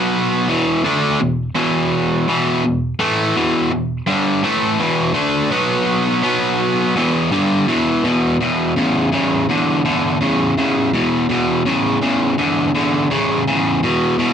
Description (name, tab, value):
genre	rock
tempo	83 BPM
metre	4/4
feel	straight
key	unclear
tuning	A4 = 436 Hz
part	crunchy overdriven guitar	solo	0.0-14.3 s	E2 to D4	-15 LUFS	equal	none
room	moderate club reverb, RT60 0.6 s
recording	none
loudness	-15 LUFS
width	side -8 dB against mid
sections	0.0-8.0 A section; 8.0-14.3 B section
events	none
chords	0.5 E5; 5.5 B5; 7.0 E5